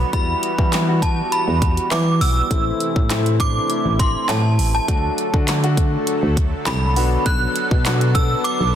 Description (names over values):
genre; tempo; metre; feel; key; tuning
dance-pop; 101 BPM; 4/4; straight; A dorian; A4 = 440 Hz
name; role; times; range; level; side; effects
synth chime; melody; 0.0-8.8 s; A5 to F#6; -23 LUFS; right 2 dB; ensemble chorus, ping-pong delay
soft supersaw; sustained chords; 0.0-8.8 s; C3 to A4; -27 LUFS; right 2 dB; sidechain pumping
solid FM bass; bass; 0.0-8.8 s; A1 to E3; -20 LUFS; equal; sidechain pumping
clear concert grand piano; accompaniment; 0.1-8.8 s; G3 to A4; -26 LUFS; left 5 dB; sidechain pumping
pop drum kit; drums; 0.1-8.6 s; handclaps, hi-hat, kick drum, snare drum; -21 LUFS; equal; none
room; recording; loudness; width
light reverb, digital ambience; dense, heavily limited modern master; -16 LUFS; side -10 dB against mid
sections
0.0-8.8 A section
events
none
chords
0.1 Emadd9; 2.5 Am; 4.9 D; 7.0 Bm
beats
| 0.13 0.72 1.32 1.91 | 2.51 3.10 3.70 4.29 | 4.88 5.48 6.07 6.67 | 7.26 7.85 8.45